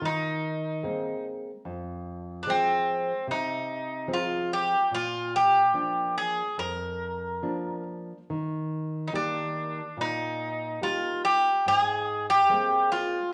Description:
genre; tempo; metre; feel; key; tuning
fado; 72 BPM; 4/4; rubato; unclear; A4 = 444 Hz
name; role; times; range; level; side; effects
Greek bouzouki; melody; 0.0-13.3 s; C4 to Bb4; -27 LUFS; equal; none
nylon-string guitar; accompaniment; 0.0-13.2 s; F2 to G4; -36 LUFS; equal; none
room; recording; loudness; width
moderate large studio reverb, RT60 1.1 s; none; -27 LUFS; mono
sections
0.0-13.3 A section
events
none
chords
0.0 Abadd9; 1.7 Fm; 4.9 Bb; 8.3 Eb; 11.7 Abadd9

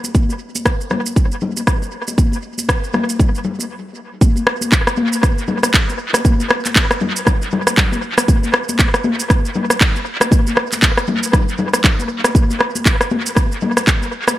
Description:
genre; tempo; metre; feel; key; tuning
house; 118 BPM; 4/4; swing 58% on 16ths; none; none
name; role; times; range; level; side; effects
electronic shaker, rim click and handclaps; drums; 0.0-14.4 s; none; -17 LUFS; equal; dub echo
congas; percussion; 0.0-14.4 s; none; -22 LUFS; left 3 dB; dub echo
electronic kick drum; drums; 0.1-14.0 s; none; -14 LUFS; equal; none
room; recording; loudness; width
light reverb, digital ambience; echo-heavy mix; -14 LUFS; side -14 dB against mid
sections
0.0-4.2 A section; 4.2-14.4 B section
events
stop 3.7-4.2; drop 4.2-14.4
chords
none

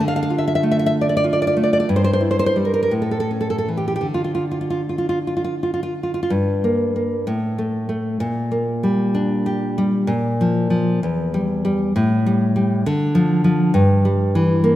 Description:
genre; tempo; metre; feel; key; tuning
romantic piece for solo classical guitar; 51-69 BPM (dotted quarters); 6/8; rubato; unclear; A4 = 440 Hz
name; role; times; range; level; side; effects
nylon-string guitar; solo; 0.0-14.8 s; E2 to F5; -17 LUFS; equal; none
room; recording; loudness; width
wet lush hall reverb, RT60 2.6 s; rough home demo mix; -17 LUFS; side -14 dB against mid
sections
0.0-6.3 A section; 6.3-14.8 B section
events
none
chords
0.0 Dm; 1.9 Gm6; 2.9 A; 4.1 N.C.; 6.3 Gm; 7.3 N.C.; 8.2 Gm/Bb; 10.1 Bb5; 11.0 Em; 11.9 Gsus2/A; 12.8 Dm; 13.7 Em/G

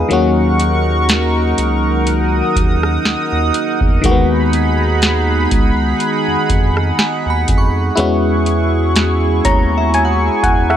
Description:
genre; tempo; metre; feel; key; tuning
contemporary R&B; 61 BPM; 4/4; swing 54% on 16ths; Eb minor; A4 = 440 Hz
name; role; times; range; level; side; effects
FM electric piano; accompaniment; 0.0-10.8 s; Eb3 to Bb5; -17 LUFS; left 3 dB; chorus
chorused pulse-width pad; sustained chords; 0.0-10.8 s; Eb4 to Eb6; -18 LUFS; right 2 dB; none
saturated sub bass; bass; 0.0-10.8 s; Db2 to F2; -17 LUFS; right 1 dB; none
booming analog drum machine; drums; 0.1-10.8 s; hi-hat, kick drum, rim click, snare drum; -16 LUFS; equal; vintage 12-bit sampler grit
glassy synth bell; texture; 7.0-10.8 s; C#5 to Db6; -25 LUFS; right 3 dB; chorus, ping-pong delay
room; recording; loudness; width
digital ambience; none; -12 LUFS; side -10 dB against mid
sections
0.0-10.8 A section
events
FM electric piano fill 9.0-10.8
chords
0.1 Ebm7; 4.0 Abm7; 8.0 E69

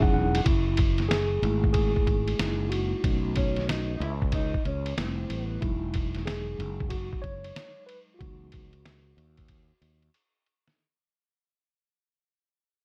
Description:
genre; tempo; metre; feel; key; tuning
hip hop, jazz-hop; 93 BPM; 4/4; swing 65% on 16ths; F# dorian; A4 = 440 Hz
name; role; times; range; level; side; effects
mellow tine electric piano; accompaniment; 0.0-10.1 s; E3 to F#5; -33 LUFS; equal; none
fretless electric bass; bass; 0.0-10.1 s; E1 to D#2; -33 LUFS; equal; none
lo-fi sampler-style drum kit; drums; 0.0-10.8 s; hi-hat, kick drum, ride cymbal, snare drum; -31 LUFS; equal; none
mellow electric guitar; second line; 3.4-5.6 s; C4 to E4; -37 LUFS; equal; subtle chorus
room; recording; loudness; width
light reverb; none; -28 LUFS; mono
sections
0.5-10.8 A section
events
tine electric piano fill 0.0-0.5; fade-out 0.5-10.8; tine electric piano solo 0.5-10.8; drum fill 9.5-10.8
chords
0.5 F#m9; 2.4 F#13; 3.0 B9; 5.0 Fmaj9; 5.6 Emaj9; 8.2 C#m11

